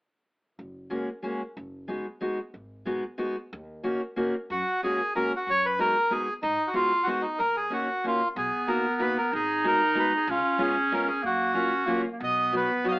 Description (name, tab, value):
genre	musette waltz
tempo	186 BPM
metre	3/4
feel	straight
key	F# major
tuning	A4 = 440 Hz
part	upright bass	bass	0.6-12.6 s	F#1 to G#2	-42 LUFS	equal	none
part	fingerpicked steel-string acoustic guitar	accompaniment	0.9-13.0 s	F#3 to F#4	-29 LUFS	equal	none
part	bandoneon	melody	4.5-13.0 s	D#4 to E#5	-25 LUFS	equal	none
part	bright clarinet	second line	8.4-13.0 s	A#3 to D#4	-27 LUFS	right 1 dB	none
room	moderate small room reverb, RT60 0.5 s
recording	AM radio sound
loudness	-24 LUFS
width	side -20 dB against mid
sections	0.6-4.5 A section; 4.5-12.2 B section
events	none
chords	0.6 F#add9; 1.6 B6/F#; 2.5 G#m7; 3.5 D#m7; 4.5 F#add9; 5.5 B6/F#; 6.4 G#m7; 7.4 D#m7; 8.4 Bmaj7; 9.3 G#m7; 10.3 C#7; 11.2 F#maj7; 12.2 B